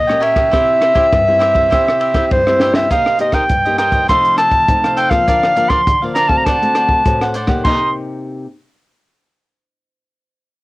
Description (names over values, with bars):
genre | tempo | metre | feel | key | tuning
samba and choro | 101 BPM | 4/4 | straight | C minor | A4 = 440 Hz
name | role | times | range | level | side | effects
clear clarinet | melody | 0.0-7.9 s | C5 to C6 | -13 LUFS | equal | cassette tape
nylon-string guitar | accompaniment | 0.0-8.5 s | G2 to G4 | -21 LUFS | left 2 dB | cassette tape
cavaquinho | accompaniment | 0.1-7.9 s | D4 to G5 | -23 LUFS | right 1 dB | cassette tape
compact cocktail drum kit | drums | 0.1-7.8 s | crash cymbal, hi-hat, kick drum, ride cymbal, rim click, snare drum | -19 LUFS | equal | none
room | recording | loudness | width
light reverb | home recording on cassette | -11 LUFS | side -19 dB against mid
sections
0.0-2.9 A section; 2.9-7.7 B section; 7.7-10.0 C section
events
drum fill 2.6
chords
0.0 Gdim/Bb; 0.5 C; 2.9 Cm7; 4.1 F7/C; 5.3 Bb/D; 6.5 D7; 7.7 Cm7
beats
| 0.53 1.12 1.72 2.31 | 2.90 3.50 4.09 4.68 | 5.28 5.87 6.46 7.06 | 7.65 8.24